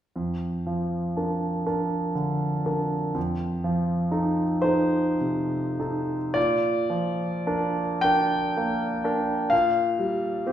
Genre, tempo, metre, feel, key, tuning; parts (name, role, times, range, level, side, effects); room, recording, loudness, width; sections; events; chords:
classical, romantic nocturne for solo piano; 33-42 BPM (dotted quarters); 6/8; rubato; Bb major; A4 = 436 Hz
clear concert grand piano; solo; 0.2-10.5 s; F2 to G5; -23 LUFS; equal
wet recital hall reverb, RT60 1.4 s; recorded in a church or concert hall; -23 LUFS; side -10 dB against mid
0.2-6.4 A section; 6.4-10.5 B section
0.2 Bb/F; 3.2 F7; 6.4 Bb; 9.5 C7(no3)/Bb (rootless)